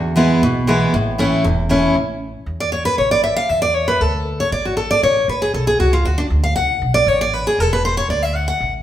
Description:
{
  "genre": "bluegrass",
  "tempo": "234 BPM",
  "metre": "4/4",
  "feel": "straight",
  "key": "A major",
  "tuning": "A4 = 440 Hz",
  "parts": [
    { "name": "picked steel-string acoustic guitar", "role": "accompaniment", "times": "0.0-8.7 s", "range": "E2 to F#5", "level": "-16 LUFS", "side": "equal", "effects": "none" },
    { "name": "upright bass", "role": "bass", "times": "0.0-8.8 s", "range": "E1 to E2", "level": "-22 LUFS", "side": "equal", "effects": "none" }
  ],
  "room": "wet large studio reverb, RT60 1.3 s",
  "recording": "band playing live in one room",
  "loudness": "-15 LUFS",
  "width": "side -11 dB against mid",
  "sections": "0.0-2.0 A section; 2.0-8.8 B section",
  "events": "steel-string acoustic guitar solo 2.0-8.8",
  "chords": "0.0 E; 0.9 A; 2.0 A5; 4.0 D5; 5.0 A; 6.1 D; 7.1 A5; 8.1 D"
}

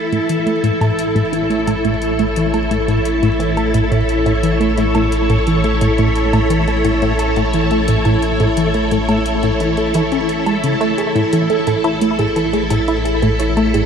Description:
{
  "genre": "ambient, sequencer-driven space music",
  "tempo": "87 BPM",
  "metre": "4/4",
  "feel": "straight",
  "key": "A major",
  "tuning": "A4 = 440 Hz",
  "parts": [
    { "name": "string machine, full ensemble", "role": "sustained chords", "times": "0.0-13.9 s", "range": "E4 to C#5", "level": "-17 LUFS", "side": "equal", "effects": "ensemble chorus" },
    { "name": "round analog bass", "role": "bass", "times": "0.0-13.9 s", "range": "A1", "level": "-22 LUFS", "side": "equal", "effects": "tube saturation" },
    { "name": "tight sequenced synth", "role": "riff", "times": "0.1-13.8 s", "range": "A2 to E4", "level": "-18 LUFS", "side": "equal", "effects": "chorus, ping-pong delay" },
    { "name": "electronic hi-hat and woodblock", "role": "percussion", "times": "0.1-13.9 s", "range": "none", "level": "-31 LUFS", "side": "equal", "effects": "ping-pong delay" },
    { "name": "soft round pluck", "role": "arpeggios", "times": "11.0-13.9 s", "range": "A3 to C#5", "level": "-20 LUFS", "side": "moving between right 1 dB and right 8 dB", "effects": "chorus, auto-pan, ping-pong delay" }
  ],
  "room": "wet huge ambient reverb, RT60 7.6 s",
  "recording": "none",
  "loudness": "-14 LUFS",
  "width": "side -7 dB against mid",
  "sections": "0.0-13.9 A section",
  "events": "filter sweep on synth arpeggio sound 0.0-13.9",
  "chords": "0.0 A"
}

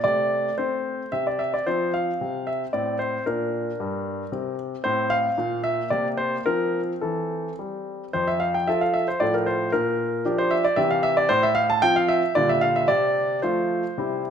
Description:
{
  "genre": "classical-period piano sonatina",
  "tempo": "112 BPM",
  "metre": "3/4",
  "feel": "rubato",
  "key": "F major",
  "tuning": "A4 = 440 Hz",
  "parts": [
    { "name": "warm concert grand piano", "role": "solo", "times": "0.0-14.3 s", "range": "F2 to A5", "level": "-21 LUFS", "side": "equal", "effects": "none" }
  ],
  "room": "moderate recital hall reverb, RT60 1.5 s",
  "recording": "none",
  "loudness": "-21 LUFS",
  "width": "side -8 dB against mid",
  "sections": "0.0-8.1 A section; 8.1-14.3 B section",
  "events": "none",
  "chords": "0.0 Amadd11/C; 1.1 N.C.; 1.7 F5; 2.7 Amadd11; 3.3 Gm/Bb; 4.3 N.C.; 4.8 F/A; 5.4 N.C.; 5.9 Bbadd9/C; 6.5 F; 9.2 F/A; 9.7 Gm7/Bb; 10.8 C; 11.3 F/A; 12.4 Gm7/Bb; 12.9 F/C"
}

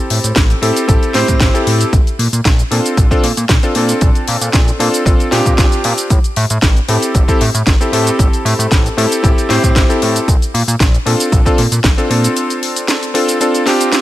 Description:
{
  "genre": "nu-disco, nu disco",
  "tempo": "115 BPM",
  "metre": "4/4",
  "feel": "straight",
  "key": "unclear",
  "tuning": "A4 = 440 Hz",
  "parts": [
    { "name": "clear electric grand piano", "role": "accompaniment", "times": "0.0-14.0 s", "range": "C4 to C5", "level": "-16 LUFS", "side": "equal", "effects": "sidechain pumping, digital delay" },
    { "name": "fat analog bass", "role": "bass", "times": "0.1-12.3 s", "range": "A1 to Bb2", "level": "-16 LUFS", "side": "equal", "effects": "tube saturation" },
    { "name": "house drum kit", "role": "drums", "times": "0.1-14.0 s", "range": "hi-hat, shaker, snare drum", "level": "-18 LUFS", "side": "equal", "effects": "overdrive" },
    { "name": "electronic kick drum", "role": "drums", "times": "0.4-12.0 s", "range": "none", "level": "-12 LUFS", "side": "equal", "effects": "overdrive" }
  ],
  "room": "little or no reverb",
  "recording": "none",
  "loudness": "-10 LUFS",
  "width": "side -14 dB against mid",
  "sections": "0.0-14.0 A section",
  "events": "none",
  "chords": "0.0 Am7; 1.9 Bbmaj7; 6.1 Am7; 10.3 Bbmaj7"
}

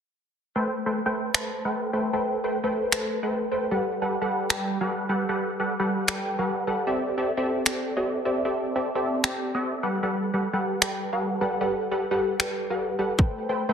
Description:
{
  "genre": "future bass",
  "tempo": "152 BPM",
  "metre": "4/4",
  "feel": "swing 56% on 16ths, half-time",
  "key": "G major",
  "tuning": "A4 = 437 Hz",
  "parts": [
    { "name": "supersaw stab", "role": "riff", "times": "0.6-13.7 s", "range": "G3 to A5", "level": "-24 LUFS", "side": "equal", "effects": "phaser, cassette tape, sidechain pumping, low-pass filter, digital delay" },
    { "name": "electronic finger snaps", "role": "drums", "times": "1.3-12.5 s", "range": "none", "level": "-24 LUFS", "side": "left 1 dB", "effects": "soft clipping on snare" },
    { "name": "electronic kick drum", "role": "drums", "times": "13.2-13.3 s", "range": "none", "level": "-19 LUFS", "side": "equal", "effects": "none" }
  ],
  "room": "wet digital room reverb, RT60 1.2 s, digital ambience",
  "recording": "dense, heavily limited modern master, lossy compression artefacts",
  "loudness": "-24 LUFS",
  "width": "side -7 dB against mid",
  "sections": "0.6-13.7 A section",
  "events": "none",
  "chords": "0.6 Am9; 3.7 Gmaj9; 6.9 C69; 9.8 Gmaj9; 13.2 Am9"
}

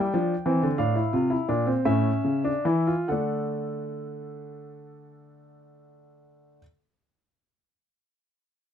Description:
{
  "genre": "classical, baroque-style 3-part fugue for grand piano",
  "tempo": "44-63 BPM (dotted quarters)",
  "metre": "6/8",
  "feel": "straight",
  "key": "unclear",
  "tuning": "A4 = 440 Hz",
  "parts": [
    { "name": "warm grand piano", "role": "solo", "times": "0.0-6.6 s", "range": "A2 to G5", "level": "-24 LUFS", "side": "equal", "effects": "none" }
  ],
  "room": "moderate studio ambience, RT60 0.5 s",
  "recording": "none",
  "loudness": "-23 LUFS",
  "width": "side -9 dB against mid",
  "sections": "0.0-3.1 A section; 3.1-8.5 B section",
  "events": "slowing down 0.0-3.1",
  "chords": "0.0 Em; 0.8 Dm/A; 1.9 A; 3.1 D"
}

